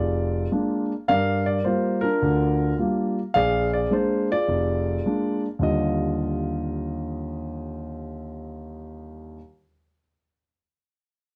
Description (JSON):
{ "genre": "solo jazz", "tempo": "106 BPM", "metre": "4/4", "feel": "swing 67% on 8ths", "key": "Eb major", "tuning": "A4 = 440 Hz", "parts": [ { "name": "warm concert grand piano", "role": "solo", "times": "0.0-9.4 s", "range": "F1 to F5", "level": "-25 LUFS", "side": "equal", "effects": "none" } ], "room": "light reverb", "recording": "dry, close 1970s-style studio recording", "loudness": "-24 LUFS", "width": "mono", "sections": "0.0-5.6 A section; 5.6-7.9 B section", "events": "none", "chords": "0.0 Bb7; 1.1 Gm7; 3.3 Bb7; 5.6 Ebmaj9" }